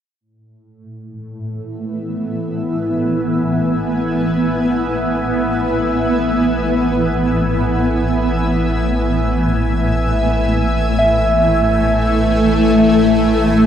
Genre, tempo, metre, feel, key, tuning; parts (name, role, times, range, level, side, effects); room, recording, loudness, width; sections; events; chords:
ambient; free time; A4 = 440 Hz
shimmering ambient pad; sustained chords; 1.2-13.7 s; A2 to G#5; -15 LUFS; equal; chorus, built-in reverb, phaser
deep rumbling drone; bass; 3.0-13.7 s; A1; -23 LUFS; equal; built-in reverb
soft synth bell; arpeggios; 11.0-13.7 s; E5; -19 LUFS; right 2 dB; chorus, tape echo
wet huge ambient reverb, RT60 7.9 s; dark, warm production; -14 LUFS; side -9 dB against mid
0.2-13.7 A section
fade-in on synth drone 0.2-13.7
0.2 A5